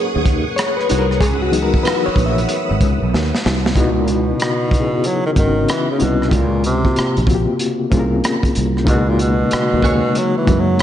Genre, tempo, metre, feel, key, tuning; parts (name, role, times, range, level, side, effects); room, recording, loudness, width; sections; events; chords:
R&B, neo-soul; 94 BPM; 4/4; swing 64% on 16ths; C# dorian; A4 = 437 Hz
overdriven reed electric piano; accompaniment; 0.0-10.8 s; B#2 to E5; -19 LUFS; left 3 dB; fast tremolo
phased string machine; sustained chords; 0.0-3.7 s; G#4 to E6; -24 LUFS; right 2 dB; ensemble chorus, phaser
sustaining fretless electric bass; bass; 0.2-10.8 s; G#1 to F#2; -18 LUFS; right 1 dB; ensemble chorus
crunchy breakbeat drum kit; drums; 0.3-10.8 s; hi-hat, kick drum, rim click, snare drum; -20 LUFS; right 1 dB
clean electric guitar; second line; 0.9-2.1, 9.5-10.0 s; D#4 to C#5; -28 LUFS; right 5 dB; analog delay
breathy tenor saxophone; melody; 3.8-10.8 s; A2 to F#3; -19 LUFS; equal; analog delay
moderate lush hall reverb, RT60 1.7 s; dreamy mix soaked in reverb, nothing above 10.3 kHz; -14 LUFS; side -11 dB against mid
0.0-3.8 A section; 3.8-10.8 B section
reed electric piano solo 0.0-3.8; drum fill 3.1-3.8
0.0 G#7sus4; 1.2 C#m11; 6.3 A#m13; 8.9 G#7sus4/C#